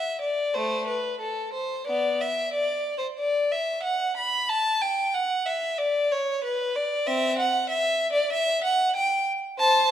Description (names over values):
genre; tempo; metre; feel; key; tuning
classical, baroque-style suite movement for unaccompanied violin; 93 BPM; 4/4; rubato; unclear; A4 = 440 Hz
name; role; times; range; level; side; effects
rich violin; solo; 0.0-9.9 s; A3 to B5; -23 LUFS; equal; none
room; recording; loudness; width
moderate scoring stage reverb, RT60 1.7 s; minimal, uncompressed stereo recording; -23 LUFS; side -10 dB against mid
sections
0.0-9.9 A section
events
none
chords
none